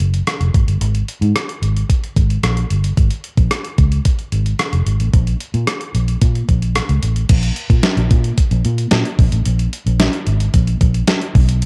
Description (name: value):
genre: 1980s-style pop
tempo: 111 BPM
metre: 4/4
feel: straight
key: unclear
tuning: A4 = 440 Hz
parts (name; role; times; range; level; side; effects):
- vintage muted fingered electric bass; bass; 0.0-11.7 s; E#1 to A#2; -18 LUFS; equal; none
- clean 12-bit digital drum machine; drums; 0.0-11.7 s; crash cymbal, hi-hat, kick drum, rim click, snare drum; -18 LUFS; equal; cassette tape
room: little or no reverb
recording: home recording on cassette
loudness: -16 LUFS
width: mono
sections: 0.0-7.3 A section; 7.3-11.7 B section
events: none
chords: none